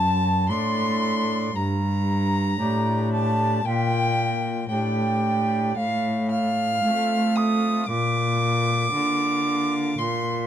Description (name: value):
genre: classical, baroque-style sonata movement with continuo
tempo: 57 BPM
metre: 4/4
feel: rubato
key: Bb major from 5.8 s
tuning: A4 = 441 Hz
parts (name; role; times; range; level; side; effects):
- rich violin; melody; 0.0-10.5 s; F5 to F6; -28 LUFS; left 6 dB; none
- baroque flute; second line; 0.0-10.5 s; F5 to Eb6; -27 LUFS; right 5 dB; none
- pipe organ, cornet; accompaniment; 0.0-10.5 s; F#2 to F5; -29 LUFS; left 2 dB; none
- warm cello; bass; 0.0-10.5 s; F#2 to A3; -24 LUFS; equal; none
room: light reverb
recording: dark, warm production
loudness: -21 LUFS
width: side -10 dB against mid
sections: 0.0-10.5 A section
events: none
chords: 0.0 D/F#; 1.5 Gm; 5.8 F/A; 7.9 Bb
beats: 0.49 | 1.55 2.60 3.65 4.70 | 5.77 6.84 7.89 8.93 | 9.98